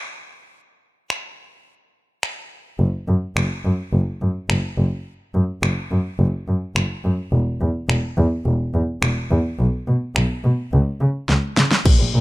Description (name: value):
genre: dance-pop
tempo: 106 BPM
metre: 4/4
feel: straight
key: F# major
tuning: A4 = 439 Hz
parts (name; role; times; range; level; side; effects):
- pop drum kit; drums; 1.1-12.0 s; crash cymbal, finger snaps, kick drum, snare drum; -20 LUFS; equal; none
- muted double bass; bass; 2.8-12.2 s; E1 to C#3; -19 LUFS; equal; sidechain pumping
room: little or no reverb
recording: none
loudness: -18 LUFS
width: side -19 dB against mid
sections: 0.0-11.9 A section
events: drum fill 11.3-11.9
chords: none